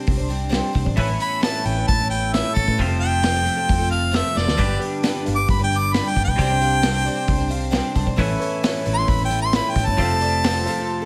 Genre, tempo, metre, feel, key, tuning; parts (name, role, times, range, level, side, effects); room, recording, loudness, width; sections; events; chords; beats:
folk rock and heartland rock; 133 BPM; 4/4; straight; A4 = 440 Hz
picked twelve-string acoustic guitar; accompaniment; 0.0-11.1 s; G2 to C5; -31 LUFS; equal
twelve-string electric guitar; riff; 0.0-11.1 s; F2 to G4; -30 LUFS; equal
hollow-body short-scale picked electric bass; bass; 0.1-10.7 s; F1 to A2; -26 LUFS; equal
vintage drum kit; drums; 0.1-10.8 s; hi-hat, kick drum, snare drum, splash cymbal; -26 LUFS; equal
clear harmonica; melody; 1.2-11.1 s; A4 to D6; -25 LUFS; equal
dark upright piano; accompaniment; 4.6-11.1 s; G4 to A5; -34 LUFS; equal
light reverb, studio reverb; -20 LUFS; mono
0.0-11.1 A section
harmonica solo 0.0-11.1; drum fill 4.4; upright piano fill 7.3-8.2
0.0 Csus2; 1.0 Aadd9; 2.8 F; 4.6 G; 6.4 Csus2; 8.2 Aadd9; 10.0 F
0.08 0.53 | 0.98 1.43 1.89 2.34 | 2.79 3.24 3.69 4.14 | 4.59 5.04 5.49 5.94 | 6.39 6.84 7.29 7.74 | 8.19 8.63 9.09 9.53 | 9.98 10.43 10.88